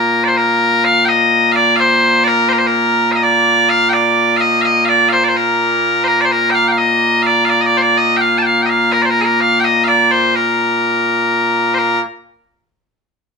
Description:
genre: scottish traditional, Scottish pipe music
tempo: 84 BPM (dotted quarters)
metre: 6/8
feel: straight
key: Bb major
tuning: A4 = 440 Hz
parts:
  - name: loud bright bagpipes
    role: solo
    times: 0.0-12.0 s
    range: Bb2 to A5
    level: -11 LUFS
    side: equal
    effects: none
room: moderate studio reverb, RT60 0.8 s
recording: band playing live in one room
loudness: -11 LUFS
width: side -5 dB against mid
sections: 0.4-11.8 A section; 11.8-13.2 B section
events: none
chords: none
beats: | 0.36 1.07 | 1.79 2.50 | 3.22 3.93 | 4.65 5.36 | 6.07 6.79 | 7.50 8.22 | 8.93 9.65 | 10.36 11.07 | 11.79

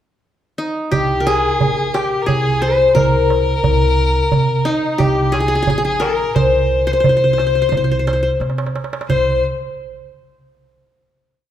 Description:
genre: Arabic maqam ensemble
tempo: 88 BPM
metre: 3/4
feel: straight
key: C maqam saba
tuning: A4 = 440 Hz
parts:
  - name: qanun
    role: melody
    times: 0.6-9.4 s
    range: Eb4 to C5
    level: -18 LUFS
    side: left 1 dB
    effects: none
  - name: rich violin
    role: second line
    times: 0.9-9.4 s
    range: Eb4 to C5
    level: -20 LUFS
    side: left 4 dB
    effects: none
  - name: upright bass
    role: bass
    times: 0.9-9.4 s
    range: Bb1 to C3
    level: -20 LUFS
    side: right 1 dB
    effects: none
  - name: darbuka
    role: percussion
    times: 0.9-9.4 s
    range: none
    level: -22 LUFS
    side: right 4 dB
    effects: none
room: moderate scoring stage reverb, RT60 1.9 s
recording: minimal, uncompressed stereo recording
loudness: -14 LUFS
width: side -10 dB against mid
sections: 0.0-0.9 pickup bar; 0.9-9.1 A section; 9.1-11.1 final note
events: drum fill 8.4-9.1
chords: none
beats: 0.24 | 0.92 1.60 2.28 | 2.96 3.64 4.32 | 5.00 5.68 6.36 | 7.04 7.72 8.41 | 9.09

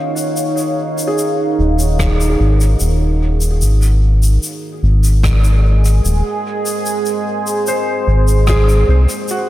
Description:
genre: ambient dub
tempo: 74 BPM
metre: 4/4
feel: straight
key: unclear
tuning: A4 = 439 Hz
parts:
  - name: deep dark ambient pad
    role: sustained chords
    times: 0.0-9.5 s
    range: Ab3 to Gb5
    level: -19 LUFS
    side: right 1 dB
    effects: chorus, built-in reverb
  - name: felt-muted upright piano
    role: arpeggios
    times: 0.0-9.5 s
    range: Gb4 to C5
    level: -23 LUFS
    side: equal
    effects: tape echo
  - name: shaker and rim click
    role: drums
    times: 0.2-9.5 s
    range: none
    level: -25 LUFS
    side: left 1 dB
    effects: studio reverb, dub echo
  - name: round analog bass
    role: bass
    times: 1.6-9.1 s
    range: Eb1 to C2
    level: -12 LUFS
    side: equal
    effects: none
  - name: electronic kick drum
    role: drums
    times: 2.0-8.6 s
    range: none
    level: -20 LUFS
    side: equal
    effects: studio reverb
room: little or no reverb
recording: none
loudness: -12 LUFS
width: side -14 dB against mid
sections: 0.0-9.5 A section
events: none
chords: 0.0 Ebm7; 3.6 Ab7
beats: | 0.37 1.18 1.99 2.81 | 3.62 4.43 5.24 6.05 | 6.86 7.67 8.48 9.29

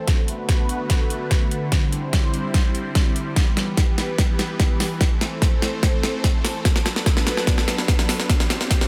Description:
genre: heavy wobble dubstep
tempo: 146 BPM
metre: 4/4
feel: half-time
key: unclear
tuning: A4 = 440 Hz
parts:
  - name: supersaw pad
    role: sustained chords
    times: 0.0-8.9 s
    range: D3 to C5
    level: -29 LUFS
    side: equal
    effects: phaser, sidechain pumping, low-pass filter
  - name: dubstep drum kit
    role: drums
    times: 0.1-8.9 s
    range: hi-hat, snare drum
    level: -27 LUFS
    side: equal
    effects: overdrive, high-pass filter on snare, high-pass filter on hats, high-pass filter on room
  - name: electronic kick drum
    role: drums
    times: 0.1-8.8 s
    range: none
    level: -22 LUFS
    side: equal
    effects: overdrive
room: light reverb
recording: none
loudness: -21 LUFS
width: mono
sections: 0.0-8.9 A section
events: build-up 0.0-8.9; drum fill 0.0-8.9; filter sweep on supersaw synth 0.0-8.9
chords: 0.1 Bm7; 1.7 Cadd9; 3.4 Em; 5.0 Am; 6.7 Bm7; 8.3 Cadd9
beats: | 0.08 0.49 0.90 1.31 | 1.72 2.13 2.54 2.95 | 3.36 3.77 4.18 4.60 | 5.01 5.42 5.83 6.24 | 6.65 7.06 7.47 7.88 | 8.29 8.71

